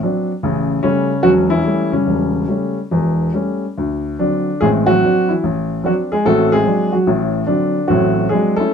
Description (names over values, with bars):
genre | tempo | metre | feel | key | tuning
solo jazz | 146 BPM | 4/4 | swing 64% on 8ths, rubato | unclear | A4 = 440 Hz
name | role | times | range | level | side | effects
warm upright piano | solo | 0.0-8.7 s | E1 to A4 | -14 LUFS | equal | none
room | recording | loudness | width
moderate small room reverb, RT60 0.6 s | dark, warm production | -14 LUFS | side -7 dB against mid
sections
0.0-8.7 A section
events
none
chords
0.4 A7; 3.8 D7